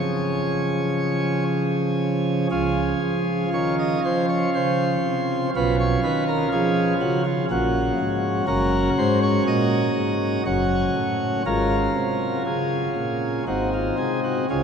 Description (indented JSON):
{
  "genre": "classical, chorale-style piece for pipe organ",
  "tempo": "60 BPM",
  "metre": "3/4",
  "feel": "rubato",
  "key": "Db major",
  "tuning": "A4 = 439 Hz",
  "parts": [
    { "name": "chamber organ, principal chorus", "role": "solo", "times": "0.0-14.6 s", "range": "Gb1 to Eb5", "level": "-20 LUFS", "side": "equal", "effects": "none" }
  ],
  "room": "wet cathedral reverb, RT60 6.7 s",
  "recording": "minimal, uncompressed stereo recording",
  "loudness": "-20 LUFS",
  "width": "side -6 dB against mid",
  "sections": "0.0-2.5 A section; 2.5-14.6 A section",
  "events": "none",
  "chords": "0.0 Db; 5.5 Db7/Cb; 7.5 Gb/Bb; 8.5 Gb; 10.5 Gbm; 11.5 Db/Ab; 13.5 Ab",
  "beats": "0.43 1.48 | 2.51 3.52 4.53 | 5.53 6.51 7.49 | 8.47 9.46 10.46 | 11.45 12.45 13.47 | 14.49"
}